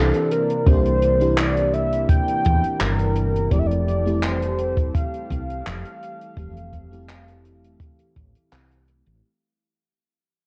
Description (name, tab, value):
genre	vaporwave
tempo	84 BPM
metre	4/4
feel	straight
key	F major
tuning	A4 = 435 Hz
part	warm velvety synth lead	melody	0.0-8.5 s	A4 to G5	-27 LUFS	equal	chorus, tape echo
part	FM electric piano with soft pad layer	accompaniment	0.0-9.3 s	E3 to G4	-31 LUFS	equal	subtle chorus
part	lush unison pad	sustained chords	0.0-9.2 s	C3 to A4	-31 LUFS	equal	chorus
part	woody fretless electric bass	bass	0.0-9.2 s	F1 to E2	-26 LUFS	equal	subtle chorus
part	compact cocktail drum kit	drums	0.1-9.2 s	handclaps, hi-hat	-31 LUFS	equal	studio reverb
part	kick drum	drums	0.7-8.3 s	none	-22 LUFS	equal	studio reverb
room	light reverb, studio reverb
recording	cassette tape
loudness	-21 LUFS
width	mono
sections	0.0-9.2 A section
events	fade-out 0.0-9.2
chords	0.0 C9; 3.5 Fmaj9